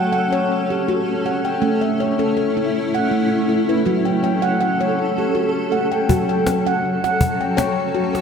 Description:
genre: world meditative, meditative tuned percussion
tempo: 81 BPM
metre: 3/4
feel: swing 53% on 16ths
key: F# minor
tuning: A4 = 439 Hz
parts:
  - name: granular cloud pad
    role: sustained chords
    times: 0.0-8.2 s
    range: F#3 to A4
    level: -21 LUFS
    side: equal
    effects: built-in reverb
  - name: handpan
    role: arpeggios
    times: 0.0-8.2 s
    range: F#3 to G5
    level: -19 LUFS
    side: equal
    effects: ping-pong delay
  - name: cajon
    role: percussion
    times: 6.1-8.2 s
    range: none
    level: -21 LUFS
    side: left 1 dB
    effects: none
room: wet echo chamber reverb, RT60 2.3 s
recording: none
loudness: -17 LUFS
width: side -6 dB against mid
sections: 0.0-6.1 A section; 6.1-8.2 B section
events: none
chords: 0.0 F#m; 1.6 A; 3.9 F#m

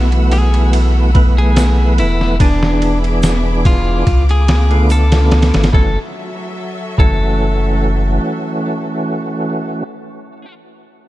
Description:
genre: trip hop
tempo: 72 BPM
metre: 4/4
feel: swing 54% on 16ths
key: F# minor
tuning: A4 = 440 Hz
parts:
  - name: percussive tonewheel organ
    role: accompaniment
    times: 0.0-9.8 s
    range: D3 to B4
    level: -19 LUFS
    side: right 1 dB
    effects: overdrive, chorus vibrato, stopped rotary speaker, tremolo, tape echo
  - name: clear symphonic string section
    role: sustained chords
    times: 0.0-9.7 s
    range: F#3 to E6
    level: -27 LUFS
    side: left 2 dB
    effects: none
  - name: soft dub sub bass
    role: bass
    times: 0.0-8.2 s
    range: E1 to C#2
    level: -13 LUFS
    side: equal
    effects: none
  - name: trip hop sampler-style drum kit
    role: drums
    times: 0.1-7.2 s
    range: kick drum, ride cymbal, snare drum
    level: -15 LUFS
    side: equal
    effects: studio reverb
  - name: clean electric guitar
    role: melody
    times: 0.3-10.5 s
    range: D4 to A4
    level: -23 LUFS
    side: left 1 dB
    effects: tape echo
  - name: tube shaker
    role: percussion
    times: 1.6-5.1 s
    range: none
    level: -33 LUFS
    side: right 3 dB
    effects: none
room: digital ambience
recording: dark, warm production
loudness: -11 LUFS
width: side -16 dB against mid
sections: 0.0-5.7 A section; 5.7-9.1 B section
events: none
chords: 0.0 B7sus4; 2.4 E7; 4.1 C#7b9b13; 5.7 F#m7

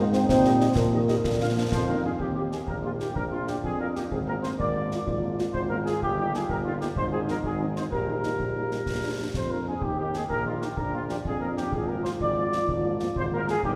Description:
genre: military-style march for wind band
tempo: 126 BPM (dotted quarters)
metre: 6/8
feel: straight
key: Eb major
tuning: A4 = 440 Hz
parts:
  - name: dark trumpet section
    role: melody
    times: 0.0-13.7 s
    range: F4 to F5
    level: -33 LUFS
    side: equal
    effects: none
  - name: mellow euphonium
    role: second line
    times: 0.0-13.8 s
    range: Bb3 to G4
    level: -33 LUFS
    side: equal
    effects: none
  - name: mellow hollow small flute group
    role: second line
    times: 0.0-2.0 s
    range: Bb4 to C5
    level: -32 LUFS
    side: equal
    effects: none
  - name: dark French horn section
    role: accompaniment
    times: 0.0-13.5 s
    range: Eb3 to G4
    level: -38 LUFS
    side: equal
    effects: none
  - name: bright trombone section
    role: sustained chords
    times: 0.0-2.2 s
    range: D3 to Eb4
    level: -36 LUFS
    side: equal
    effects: none
  - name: clear tuba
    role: bass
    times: 0.0-13.8 s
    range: G1 to Bb2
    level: -32 LUFS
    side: equal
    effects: none
  - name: concert snare drum and concert bass drum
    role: drums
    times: 0.1-13.7 s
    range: none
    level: -37 LUFS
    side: equal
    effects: none
room: wet church reverb, RT60 2.6 s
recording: recorded in a church or concert hall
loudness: -27 LUFS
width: mono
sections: 0.0-2.2 A section; 2.2-13.8 B section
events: none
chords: 0.3 Eb/Bb; 1.2 Bb; 2.2 Eb; 3.2 Bb; 4.1 Bb7/Ab; 6.0 Eb/G; 7.0 Fm7/Ab; 7.9 Eb/Bb; 8.9 Bb; 9.8 Eb5; 10.8 Bb; 11.7 Bb7/Ab

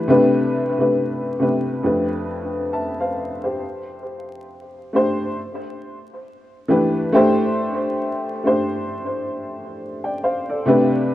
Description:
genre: hip hop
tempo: 68 BPM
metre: 4/4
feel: swing 60% on 16ths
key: unclear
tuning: A4 = 440 Hz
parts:
  - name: dark upright piano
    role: solo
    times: 0.0-11.1 s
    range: F2 to A5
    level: -18 LUFS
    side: left 1 dB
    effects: cassette tape, low-pass filter, tape echo
room: light reverb, small room ambience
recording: rough home demo mix, vinyl crackle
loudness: -18 LUFS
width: side -14 dB against mid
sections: 0.0-7.1 A section; 7.1-11.1 B section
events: none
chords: 0.1 C5; 1.8 F6; 3.6 D5; 5.4 Em7; 7.1 D5

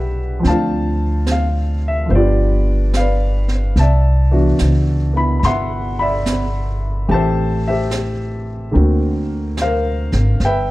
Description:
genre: jazz ballad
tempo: 72 BPM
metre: 4/4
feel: swing 67% on 8ths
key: unclear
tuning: A4 = 440 Hz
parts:
  - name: warm grand piano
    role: accompaniment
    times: 0.0-10.7 s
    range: D3 to C6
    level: -19 LUFS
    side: left 1 dB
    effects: none
  - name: upright bass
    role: bass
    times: 0.0-10.7 s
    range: G1 to D2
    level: -17 LUFS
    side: equal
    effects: none
  - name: jazz brush drum kit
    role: drums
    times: 0.4-10.7 s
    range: brushed snare drum, hi-hat, snare drum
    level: -27 LUFS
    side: right 3 dB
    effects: none
room: little or no reverb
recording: dark, warm production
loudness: -14 LUFS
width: side -18 dB against mid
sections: 0.0-10.7 A section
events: none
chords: 0.4 Dm7; 2.1 G7; 3.8 Cmaj9#11; 7.1 Am7; 8.7 D7alt

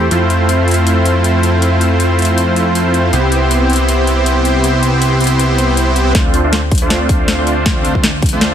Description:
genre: future bass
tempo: 159 BPM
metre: 4/4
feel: swing 55% on 16ths, half-time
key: unclear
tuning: A4 = 440 Hz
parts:
  - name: supersaw chords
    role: riff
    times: 0.0-8.5 s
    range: A3 to C5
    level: -14 LUFS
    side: equal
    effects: sidechain pumping, low-pass filter, dub echo
  - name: fat analog bass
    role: bass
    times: 0.0-8.5 s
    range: C2 to F2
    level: -15 LUFS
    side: equal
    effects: sidechain pumping
  - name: trap drum kit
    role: drums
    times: 0.1-8.5 s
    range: hi-hat, snare drum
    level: -18 LUFS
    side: left 2 dB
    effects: overdrive
  - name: electronic kick drum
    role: drums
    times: 6.1-8.3 s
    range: none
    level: -15 LUFS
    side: equal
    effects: overdrive
room: light reverb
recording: none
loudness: -10 LUFS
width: side -9 dB against mid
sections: 0.0-6.2 A section; 6.2-8.5 B section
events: build-up 6.2-8.5; drum fill 6.2-8.5; filter sweep on supersaw synth 6.2-8.5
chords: 0.1 Fmaj7; 3.1 Cmaj7; 6.2 Dm7

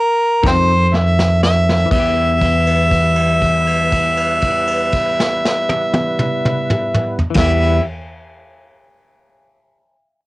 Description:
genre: slow blues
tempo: 40 BPM (dotted quarters)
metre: 12/8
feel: straight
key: E minor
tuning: A4 = 440 Hz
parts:
  - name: clear harmonica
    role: melody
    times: 0.0-7.8 s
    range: A#4 to G5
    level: -16 LUFS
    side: equal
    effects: overdrive, cassette tape
  - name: semi-hollow electric guitar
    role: accompaniment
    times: 0.4-7.9 s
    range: E3 to A4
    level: -25 LUFS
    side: left 7 dB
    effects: harmonic tremolo
  - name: tonewheel organ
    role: sustained chords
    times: 0.4-7.8 s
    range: Eb3 to B4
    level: -25 LUFS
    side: equal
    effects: overdrive, chorus vibrato, slow rotary speaker
  - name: upright bass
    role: bass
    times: 0.4-7.8 s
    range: E2 to F2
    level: -17 LUFS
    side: equal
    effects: none
  - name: vintage brush drum kit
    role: drums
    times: 0.4-7.6 s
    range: crash cymbal, kick drum, snare drum, toms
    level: -20 LUFS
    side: equal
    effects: cassette tape
room: light reverb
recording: home recording on cassette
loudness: -13 LUFS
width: side -19 dB against mid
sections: 0.0-1.9 A section; 1.9-8.0 B section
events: slowing down 0.0-1.9; harmonica solo 0.0-1.9; stop 0.0-0.4; drum fill 0.4-1.9; held note 1.9-7.4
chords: 0.4 F7; 1.9 Em

